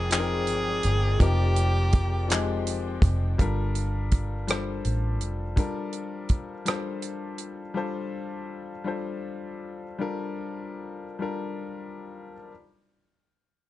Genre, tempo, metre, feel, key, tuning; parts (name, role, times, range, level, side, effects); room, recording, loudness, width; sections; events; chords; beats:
slow six-eight R&B; 55 BPM (dotted quarters); 6/8; uneven beats; G minor; A4 = 442 Hz
bright tenor saxophone; melody; 0.0-2.7 s; G4 to Ab4; -29 LUFS; equal
warm grand piano; accompaniment; 0.0-12.5 s; F3 to G5; -32 LUFS; left 4 dB
rich symphonic string section; sustained chords; 0.0-3.3 s; F3 to G5; -39 LUFS; equal
vintage muted fingered electric bass; bass; 0.0-5.5 s; F1 to A1; -26 LUFS; equal
damped 70s drum kit; drums; 0.1-7.6 s; handclaps, hi-hat, kick drum, rim click; -24 LUFS; equal
light reverb; dark, warm production, nothing above 10.3 kHz; -25 LUFS; side -15 dB against mid
0.0-3.4 A section; 3.4-12.5 B section
slowing down 7.7-12.5
0.0 Fm9; 3.4 Gm9
0.11 | 1.20 2.29 | 3.38 4.47 | 5.57 6.66 | 7.75 8.85 | 9.99 11.20